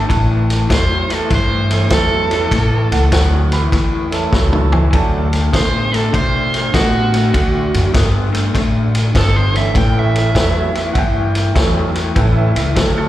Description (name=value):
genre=electric blues shuffle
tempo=100 BPM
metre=4/4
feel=swing 66% on 8ths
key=A mixolydian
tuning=A4 = 442 Hz
part: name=clear upright piano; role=second line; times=0.0-5.4, 10.9-13.1 s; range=A4 to B5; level=-25 LUFS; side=right 4 dB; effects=slapback echo
part: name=electric guitar through a small old amp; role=riff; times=0.0-13.1 s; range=A2 to B3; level=-21 LUFS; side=left 4 dB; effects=tremolo, slapback echo
part: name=upright bass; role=bass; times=0.0-13.1 s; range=G1 to B2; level=-16 LUFS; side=equal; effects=none
part: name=vintage drum kit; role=drums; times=0.1-12.9 s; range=kick drum, ride cymbal, snare drum, toms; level=-18 LUFS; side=equal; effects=none
part: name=crunchy overdriven guitar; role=melody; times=0.7-11.7 s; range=F#4 to G5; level=-20 LUFS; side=right 3 dB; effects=slapback echo
part: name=tonewheel organ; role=accompaniment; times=1.7-5.3, 9.5-12.5 s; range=E3 to A4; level=-23 LUFS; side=right 7 dB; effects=slow rotary speaker, overdrive, slapback echo
room=studio ambience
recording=live gig heard through the venue's PA, club reverb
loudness=-12 LUFS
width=side -14 dB against mid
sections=0.0-13.1 A section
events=drum fill 4.3-4.9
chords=0.1 A; 4.9 D; 9.8 A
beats=| 0.09 0.70 1.30 1.91 | 2.51 3.12 3.72 4.32 | 4.93 5.53 6.13 6.74 | 7.34 7.94 8.55 9.15 | 9.75 10.35 10.96 11.56 | 12.16 12.76